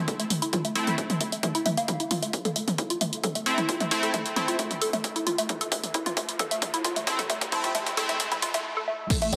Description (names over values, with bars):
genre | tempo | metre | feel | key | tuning
driving peak-time techno | 133 BPM | 4/4 | straight | A minor | A4 = 439 Hz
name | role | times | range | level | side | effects
woody wave-folded pluck | riff | 0.1-9.4 s | A3 to A4 | -32 LUFS | equal | chorus, overdrive, sidechain pumping, dub echo
electronic kick drum | drums | 0.1-9.2 s | none | -33 LUFS | equal | high-pass filter on kick
punchy analog drum machine | drums | 0.1-9.4 s | crash cymbal, hi-hat, ride cymbal, tambourine, toms | -31 LUFS | equal | sidechain pumping on hats, sidechain pumping on toms, sidechain pumping on cymbals, sidechain pumping on perc
sync-sweep polysynth | stabs | 0.8-8.2 s | A3 to E4 | -33 LUFS | equal | chorus, phaser, sidechain pumping, dub echo
riser | sound effects | 3.2-8.6 s | none | -42 LUFS | equal | none
gritty driven synth bass | bass | 9.3-9.4 s | A1 | -28 LUFS | equal | distortion, sidechain pumping
room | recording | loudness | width
wet lush hall reverb, RT60 2.0 s | dense, heavily limited modern master, high-pass filter | -27 LUFS | mono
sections
0.0-9.1 A section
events
build-up 0.0-9.1; filter sweep on synth arpeggio sound 0.0-9.1; drum fill 1.9-8.7; riser 3.2-8.7; break 8.7-9.1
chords
0.0 Am